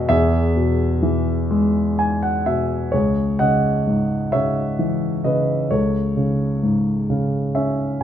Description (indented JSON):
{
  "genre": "classical, lyrical solo piano",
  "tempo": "43 BPM (dotted quarters)",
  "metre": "6/8",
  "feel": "rubato",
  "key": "C# minor",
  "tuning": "A4 = 441 Hz",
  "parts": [
    { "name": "dark concert grand piano", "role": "solo", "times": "0.0-8.0 s", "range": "C#2 to G#5", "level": "-17 LUFS", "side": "equal", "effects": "none" }
  ],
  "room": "moderate recital hall reverb, RT60 1.8 s",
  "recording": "close, detailed microphones",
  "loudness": "-17 LUFS",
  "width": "side -10 dB against mid",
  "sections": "0.0-2.9 A section; 2.9-8.0 B section",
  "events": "grand piano fill 1.5-2.9, 7.1-8.0",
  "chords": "0.1 E; 2.9 C#m7; 5.7 Amaj7/C#"
}